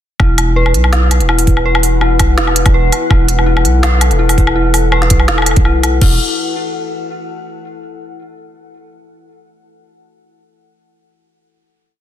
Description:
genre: half-time drum and bass.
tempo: 165 BPM.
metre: 4/4.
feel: swing 53% on 16ths, half-time.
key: unclear.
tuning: A4 = 440 Hz.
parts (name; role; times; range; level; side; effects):
deep dark ambient pad; sustained chords; 1.2-6.2 s; E4 to F#5; -22 LUFS; left 3 dB; chorus, built-in reverb, sidechain pumping.
dark detuned synth bell; arpeggios; 0.2-6.2 s; E4 to B4; -18 LUFS; left 2 dB; chorus, digital delay.
long sustained 808-style bass; bass; 0.2-6.2 s; E1 to B1; -13 LUFS; equal; none.
electronic kick drum; drums; 0.2-6.1 s; none; -12 LUFS; equal; none.
organic electronic drum kit; drums; 0.2-6.1 s; crash cymbal, hi-hat, snare drum, woodblock; -16 LUFS; equal; none.
room: light reverb, digital ambience.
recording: dense, heavily limited modern master.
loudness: -10 LUFS.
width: side -11 dB against mid.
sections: 0.2-6.0 drop; 6.0-7.5 final chord.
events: drop 0.2-6.0.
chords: 0.2 Esus2.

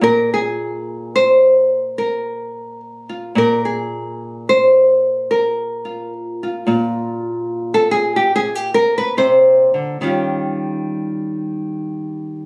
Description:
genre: solo jazz.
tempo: 72 BPM.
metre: 4/4.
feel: swing 69% on 8ths.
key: unclear.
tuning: A4 = 441 Hz.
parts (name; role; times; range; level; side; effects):
nylon-string guitar; solo; 0.0-12.5 s; Bb2 to C5; -18 LUFS; equal; none.
room: light reverb.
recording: recorded on a phone in the room, studio ambience, compression.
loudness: -17 LUFS.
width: mono.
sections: 0.0-12.5 A section.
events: nylon-string guitar solo 0.0-12.5.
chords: 0.0 Bb7sus2; 10.0 Eb9.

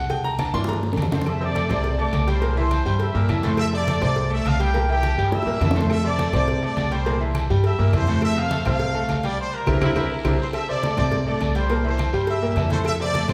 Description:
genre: latin, salsa.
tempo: 207 BPM.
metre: 4/4.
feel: straight.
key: unclear.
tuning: A4 = 440 Hz.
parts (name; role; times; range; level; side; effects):
bright grand piano; accompaniment; 0.0-13.3 s; A2 to C6; -28 LUFS; equal; none.
upright bass; bass; 0.0-13.3 s; C2 to G2; -26 LUFS; equal; none.
agogo bells and timbales; percussion; 0.1-13.3 s; none; -36 LUFS; equal; none.
congas; percussion; 0.1-13.3 s; none; -31 LUFS; equal; none.
cowbell and bongos; percussion; 0.1-13.3 s; none; -34 LUFS; equal; none.
guiro; percussion; 0.1-13.3 s; none; -44 LUFS; equal; none.
claves; percussion; 0.4-13.3 s; none; -43 LUFS; equal; none.
clear trumpet section; melody; 1.1-13.3 s; G4 to E6; -29 LUFS; equal; none.
bright saxophone section; second line; 9.8-10.5 s; C4 to E4; -33 LUFS; equal; none.
room: wet large studio reverb, RT60 1.4 s.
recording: heard from further back in the room.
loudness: -22 LUFS.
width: mono.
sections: 0.0-1.3 A section; 1.3-10.5 B section; 10.5-13.3 B section.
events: grand piano solo 0.0-1.3; drum fill 0.4-1.3, 5.3-5.9, 9.7-10.5; band accent 9.4-10.5.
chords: 0.1 C7; 1.3 Fmaj7; 2.4 C7; 3.6 Fmaj7; 4.7 C7; 5.9 Fmaj7; 7.1 C7; 8.2 Fmaj7; 9.4 C7; 10.5 C69; 11.7 C7.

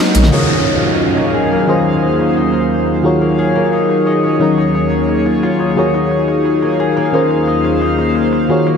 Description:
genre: liquid drum and bass.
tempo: 176 BPM.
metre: 4/4.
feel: straight.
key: Eb dorian.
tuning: A4 = 440 Hz.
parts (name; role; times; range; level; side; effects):
mellow FM electric piano; accompaniment; 0.0-8.8 s; Eb3 to Db5; -16 LUFS; equal; chorus, vintage 12-bit sampler grit, dub echo.
airy breathy pad; sustained chords; 0.0-8.8 s; Eb2 to Gb5; -16 LUFS; equal; chorus.
drum and bass drum kit; drums; 0.1-8.7 s; hi-hat, ride cymbal, toms; -19 LUFS; left 1 dB; low-pass filter on hats, low-pass filter on cymbals, low-pass filter on snare, low-pass filter on toms.
concert harp; arpeggios; 0.3-8.8 s; Bb3 to Eb5; -18 LUFS; left 3 dB; low-pass filter, dub echo.
downlifter; sound effects; 0.3-3.0 s; none; -20 LUFS; right 2 dB; none.
room: moderate lush hall reverb, RT60 1.8 s.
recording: none.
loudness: -12 LUFS.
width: side -6 dB against mid.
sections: 0.3-8.8 A section.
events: drum fill 0.1.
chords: 0.3 Ebm11; 1.7 Gbmaj9#11/Eb; 3.0 Ebm11; 7.1 Gbmaj9#11/Eb.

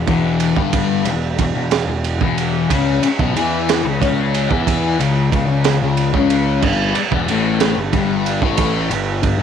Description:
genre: psychedelic rock.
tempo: 61 BPM (dotted quarters).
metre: 6/8.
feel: straight.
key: E dorian.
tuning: A4 = 441 Hz.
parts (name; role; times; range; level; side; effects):
thick fuzz guitar; riff; 0.0-9.4 s; E2 to E4; -18 LUFS; left 8 dB; distortion, phaser.
fuzz picked electric bass; bass; 0.0-9.4 s; E1 to E2; -21 LUFS; right 2 dB; overdrive.
crunchy breakbeat drum kit; drums; 0.1-9.4 s; crash cymbal, kick drum, ride cymbal, snare drum; -20 LUFS; right 6 dB; none.
room: light reverb, small room reverb.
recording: 1960s-style stereo with parts hard left and right.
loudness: -15 LUFS.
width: side -8 dB against mid.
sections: 0.0-9.4 A section.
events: none.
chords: 0.0 Em; 2.7 Bsus4 (rootless); 6.6 G5.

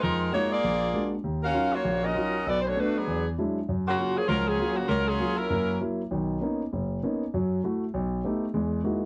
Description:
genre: jazz.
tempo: 197 BPM.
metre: 4/4.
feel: swing 62% on 8ths.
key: F# major.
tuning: A4 = 443 Hz.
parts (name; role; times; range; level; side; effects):
bright saxophone section; melody; 0.0-5.8 s; C#3 to E#5; -29 LUFS; equal; none.
warm grand piano; accompaniment; 0.0-9.0 s; F#1 to G4; -30 LUFS; equal; none.
room: moderate studio ambience, RT60 0.5 s.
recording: cassette tape.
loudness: -27 LUFS.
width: mono.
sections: 0.0-6.1 A section; 6.1-9.1 B section.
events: none.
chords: 0.0 F#maj13/E#; 0.6 A#7b13; 1.2 D#m9; 2.5 Bm7; 3.1 E9; 3.7 F#maj7; 5.5 F#7; 6.1 Bmaj9; 7.3 F#m7; 7.9 Baug7; 8.5 Emaj9#11.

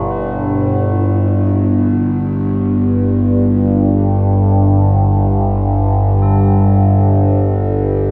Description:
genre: dark ambient drone.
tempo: free time.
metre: none.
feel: none.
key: unclear.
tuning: A4 = 439 Hz.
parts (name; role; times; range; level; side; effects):
dark analog pad; sustained chords; 0.0-0.7 s; B2 to C#5; -31 LUFS; equal; none.
tubular bells; arpeggios; 0.0-8.1 s; F#4 to A4; -36 LUFS; equal; tape echo, shimmer reverb.
overtone-sweeping drone; drone; 0.0-8.1 s; G1 to G2; -14 LUFS; equal; chorus, built-in reverb.
bronze singing bowl; texture; 0.0-0.7 s; E4; -33 LUFS; equal; none.
room: wet cathedral reverb, RT60 6.9 s.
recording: in a vast, echoing space.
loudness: -14 LUFS.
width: mono.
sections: 0.7-8.1 A section.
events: fade-in on tubular bells 0.7-8.1.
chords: 0.0 Bm7; 0.7 G5.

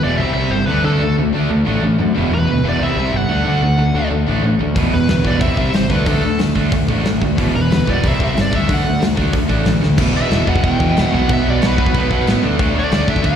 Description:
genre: punk rock.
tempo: 184 BPM.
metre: 4/4.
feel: straight.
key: E minor.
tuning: A4 = 440 Hz.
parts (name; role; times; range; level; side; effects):
biting lead guitar; melody; 0.0-13.4 s; A4 to G5; -22 LUFS; equal; overdrive, slapback echo.
raw garage guitar; riff; 0.0-13.4 s; E2 to D4; -20 LUFS; right 10 dB; overdrive, slapback echo.
tight distorted guitar; riff; 0.0-13.4 s; E2 to D4; -21 LUFS; left 11 dB; distortion, slapback echo.
fuzz picked electric bass; bass; 0.0-13.3 s; E1 to D3; -19 LUFS; equal; overdrive.
big rock drum kit; drums; 4.8-13.3 s; crash cymbal, hi-hat, kick drum, snare drum; -19 LUFS; left 1 dB; none.
room: little or no reverb.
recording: live gig heard through the venue's PA, recital hall reverb.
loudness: -14 LUFS.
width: side -8 dB against mid.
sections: 0.0-10.0 A section; 10.0-13.4 B section.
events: drum fill 9.8.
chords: 0.2 C5; 0.7 D5; 2.2 E5; 2.8 C5; 3.3 D; 4.8 E5; 5.4 C5; 5.9 D5; 7.4 E5; 8.0 C5; 8.5 D5; 10.0 Em; 11.1 B5; 12.4 D5.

